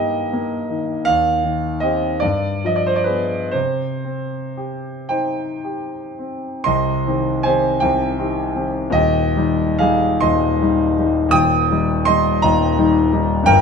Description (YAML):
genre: classical, romantic nocturne for solo piano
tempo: 36-57 BPM (dotted quarters)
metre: 6/8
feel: rubato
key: C minor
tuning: A4 = 445 Hz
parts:
  - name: clear concert grand piano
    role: solo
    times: 0.0-13.6 s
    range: Eb1 to Eb6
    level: -16 LUFS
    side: equal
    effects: none
room: wet stone room reverb, RT60 1.4 s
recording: none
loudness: -16 LUFS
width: side -6 dB against mid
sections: 0.0-6.7 A section; 6.7-13.6 B section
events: none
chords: 0.0 Eb/G; 1.1 Cm/Eb; 2.2 G7b9; 3.5 Cm; 8.9 Cm/Eb; 11.3 Eb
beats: | 1.05 2.22 | 3.53 5.10 | 6.66 7.82 | 8.95 10.24 | 11.34 12.45 | 13.51